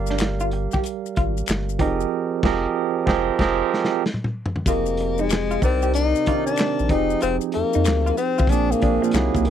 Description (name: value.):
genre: R&B, neo-soul.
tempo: 94 BPM.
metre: 4/4.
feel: swing 64% on 16ths.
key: F dorian.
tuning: A4 = 435 Hz.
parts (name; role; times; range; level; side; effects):
barky tine electric piano; accompaniment; 0.0-9.5 s; Bb2 to F5; -23 LUFS; right 10 dB; medium stereo tremolo.
round analog bass; bass; 0.0-9.5 s; F1 to F2; -24 LUFS; left 1 dB; none.
electric guitar through a small old amp; second line; 0.1-9.5 s; Bb3 to G4; -28 LUFS; equal; none.
crunchy breakbeat drum kit; drums; 0.1-9.5 s; crash cymbal, handclaps, hi-hat, kick drum, snare drum, toms; -24 LUFS; left 1 dB; none.
maracas and finger snaps; percussion; 0.1-9.5 s; none; -33 LUFS; left 24 dB; none.
breathy tenor saxophone; melody; 4.7-9.5 s; D#3 to Eb4; -23 LUFS; left 7 dB; none.
room: little or no reverb.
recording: dry, close 1970s-style studio recording.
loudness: -19 LUFS.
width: side -9 dB against mid.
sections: 0.0-4.7 A section; 4.7-9.5 B section.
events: band accent 2.1-4.7; drum fill 3.4-4.7; tenor saxophone solo 4.7-9.5.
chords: 0.0 Gm7; 1.8 Fm11; 4.0 N.C.; 4.7 Fm7; 5.6 Cm9; 6.9 Fm7; 8.5 Bb7.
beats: 0.19 0.83 1.47 | 2.11 2.75 3.38 4.02 | 4.66 5.30 5.94 6.58 | 7.21 7.85 8.49 9.13.